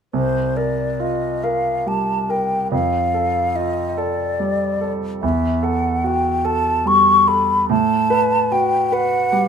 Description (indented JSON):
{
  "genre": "classical, impressionist duo for flute and grand piano",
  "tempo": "48 BPM (dotted quarters)",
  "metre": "6/8",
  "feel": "rubato",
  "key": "unclear",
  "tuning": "A4 = 440 Hz",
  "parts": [
    { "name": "mellow hollow concert flute", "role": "melody", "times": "0.1-9.5 s", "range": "C5 to Db6", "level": "-18 LUFS", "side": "left 2 dB", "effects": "none" },
    { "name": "clear concert grand piano", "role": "accompaniment", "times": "0.1-9.5 s", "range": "C2 to B4", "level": "-20 LUFS", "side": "right 2 dB", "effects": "none" }
  ],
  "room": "light reverb",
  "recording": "minimal, uncompressed stereo recording",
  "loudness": "-16 LUFS",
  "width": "side -7 dB against mid",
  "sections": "0.1-9.5 A section",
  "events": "none",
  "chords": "0.1 C7sus4; 2.7 F69; 5.2 Emadd9; 7.7 Asus2"
}